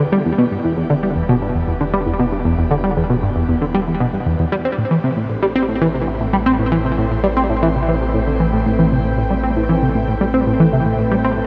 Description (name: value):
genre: ambient, sequencer-driven space music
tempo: 116 BPM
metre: 4/4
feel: straight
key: unclear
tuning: A4 = 441 Hz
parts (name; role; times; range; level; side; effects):
- lush unison pad; sustained chords; 0.0-11.5 s; A2 to G5; -25 LUFS; equal; chorus
- tight sequenced synth; riff; 0.0-11.4 s; E2 to C4; -18 LUFS; equal; chorus, phaser, delay
- round analog bass; bass; 0.0-11.5 s; E1 to A1; -28 LUFS; equal; tube saturation
room: moderate shimmer reverb, RT60 6.8 s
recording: dark, warm production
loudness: -17 LUFS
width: mono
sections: 0.0-11.5 A section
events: fade-in on analog synth pad 0.0-11.5; fade-in on analog synth bass 0.0-11.5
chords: 0.0 Em7; 4.5 Am7